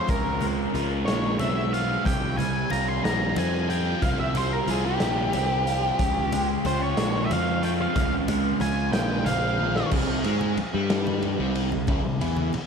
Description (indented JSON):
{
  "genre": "psychedelic rock",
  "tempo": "61 BPM (dotted quarters)",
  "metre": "6/8",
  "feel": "straight",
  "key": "C phrygian dominant",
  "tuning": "A4 = 440 Hz",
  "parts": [
    { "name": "octave-fuzz lead guitar", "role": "melody", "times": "0.0-9.9 s", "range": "G4 to C6", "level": "-28 LUFS", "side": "equal", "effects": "distortion, analog delay" },
    { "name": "overdriven electric guitar", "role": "riff", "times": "0.0-12.6 s", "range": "C3 to F4", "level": "-27 LUFS", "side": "right 1 dB", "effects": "phaser" },
    { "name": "fuzz picked electric bass", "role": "bass", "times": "0.1-12.6 s", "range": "Bb1 to Ab2", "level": "-28 LUFS", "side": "equal", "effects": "overdrive" },
    { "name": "raw garage drum kit", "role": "drums", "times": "0.1-12.7 s", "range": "crash cymbal, hi-hat, kick drum, ride cymbal, snare drum, toms", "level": "-30 LUFS", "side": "equal", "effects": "none" },
    { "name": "congas", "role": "percussion", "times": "0.1-12.7 s", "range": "none", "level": "-37 LUFS", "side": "left 4 dB", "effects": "none" }
  ],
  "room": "moderate huge ambient reverb, RT60 4.6 s",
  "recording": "dreamy mix soaked in reverb",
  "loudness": "-22 LUFS",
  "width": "side -6 dB against mid",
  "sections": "0.0-9.9 A section; 9.9-12.7 B section",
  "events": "lead electric guitar solo 0.0-9.9; drum fill 9.6-9.9",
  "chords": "0.0 Dbmaj7; 2.1 Csus4; 6.0 Dbmaj7; 9.9 C",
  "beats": "| 0.10 1.08 | 2.07 3.05 | 4.03 5.01 | 6.00 6.98 | 7.96 8.94 | 9.92 10.90 | 11.88"
}